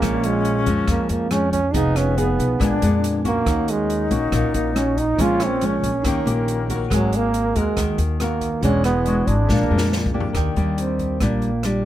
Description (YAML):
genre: bossa nova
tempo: 139 BPM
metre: 4/4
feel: straight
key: unclear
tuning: A4 = 440 Hz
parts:
  - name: mellow trombone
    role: melody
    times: 0.0-11.8 s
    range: F#3 to E#4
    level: -23 LUFS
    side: right 4 dB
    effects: none
  - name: bright alto flute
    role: second line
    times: 0.0-10.1 s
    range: G#3 to D#4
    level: -27 LUFS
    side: left 6 dB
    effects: none
  - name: bell-like tine electric piano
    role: accompaniment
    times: 0.0-11.8 s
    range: C#4 to G#5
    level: -31 LUFS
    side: right 2 dB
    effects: medium stereo tremolo
  - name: nylon-string guitar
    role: accompaniment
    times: 0.0-11.8 s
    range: E#2 to A#4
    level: -23 LUFS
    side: left 2 dB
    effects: none
  - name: upright bass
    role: bass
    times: 0.0-11.8 s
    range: E1 to E#2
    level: -23 LUFS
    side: equal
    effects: none
  - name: open jazz drum kit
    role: drums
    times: 0.0-11.7 s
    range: hi-hat, kick drum, rim click, snare drum, toms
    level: -27 LUFS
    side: equal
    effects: none
room: little or no reverb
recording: close, detailed microphones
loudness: -18 LUFS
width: side -12 dB against mid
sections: 0.0-10.3 A section; 10.3-11.8 B section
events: drum fill 9.5-10.3; trombone solo 10.3-11.8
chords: 0.0 A#m7; 1.7 Fm7b5; 2.6 A#7b9; 3.5 D#m7; 5.2 A#m7; 6.0 D#7; 6.9 G#m9; 8.6 E9; 9.5 A#7; 10.3 Ebmaj7